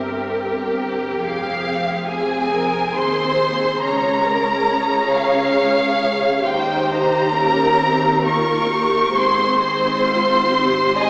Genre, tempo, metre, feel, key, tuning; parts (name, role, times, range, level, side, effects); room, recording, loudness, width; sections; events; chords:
classical, slow romantic movement for string orchestra; 68 BPM; 3/4; rubato; Ab major; A4 = 439 Hz
rich chamber violin section; second line; 0.0-11.1 s; G4 to Eb5; -24 LUFS; equal
warm symphonic viola section; accompaniment; 0.0-11.1 s; Bb3 to Bb4; -25 LUFS; equal
warm symphonic cello section; bass; 0.0-11.1 s; Db2 to Ab2; -32 LUFS; equal
warm symphonic double bass section; bass; 0.0-11.1 s; F1 to Eb2; -35 LUFS; equal
dark symphonic violin section; melody; 1.2-11.1 s; F5 to Db6; -22 LUFS; equal
wet church reverb, RT60 3.2 s; recorded in a church or concert hall, small speaker sound; -18 LUFS; mono
0.0-11.1 A section
0.0 C7(no3)/G; 1.2 Fm; 3.8 Bbm7/Db; 6.5 Eb7; 9.2 Ab